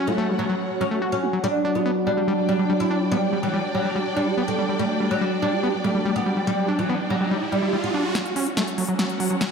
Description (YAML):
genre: psychedelic trance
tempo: 143 BPM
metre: 4/4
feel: straight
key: unclear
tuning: A4 = 442 Hz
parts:
  - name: evolving wavetable pad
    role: sustained chords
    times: 0.0-9.5 s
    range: F#3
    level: -27 LUFS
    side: right 1 dB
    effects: phaser, built-in reverb
  - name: overdriven acid bass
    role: riff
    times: 0.0-9.4 s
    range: F#3 to G4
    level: -26 LUFS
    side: left 1 dB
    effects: auto-pan, diffuse ambient delay
  - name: warm studio string section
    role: texture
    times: 0.0-9.5 s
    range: C#4 to G5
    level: -31 LUFS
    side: equal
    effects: none
  - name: oud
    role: melody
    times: 0.1-8.0 s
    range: E3 to E4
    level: -25 LUFS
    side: right 1 dB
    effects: phaser, tape echo
  - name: riser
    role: sound effects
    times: 6.4-9.5 s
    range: none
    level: -31 LUFS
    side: right 2 dB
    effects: none
  - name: big-room dance drum kit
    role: drums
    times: 8.2-9.5 s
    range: hi-hat, snare drum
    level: -26 LUFS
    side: equal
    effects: overdrive
room: moderate plate reverb, RT60 1.3 s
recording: dreamy mix soaked in reverb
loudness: -20 LUFS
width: side -6 dB against mid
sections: 0.0-8.2 A section; 8.2-9.5 B section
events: riser 6.4-8.2, 8.2-9.5; build-up 8.2-9.5; drum fill 8.2-9.5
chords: 0.0 F#5; 1.4 G5; 8.2 F#5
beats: 0.18 0.60 1.02 | 1.44 1.86 2.28 2.70 | 3.12 3.54 3.96 4.38 | 4.79 5.21 5.63 6.05 | 6.47 6.89 7.31 7.73 | 8.15 8.57 8.99 9.41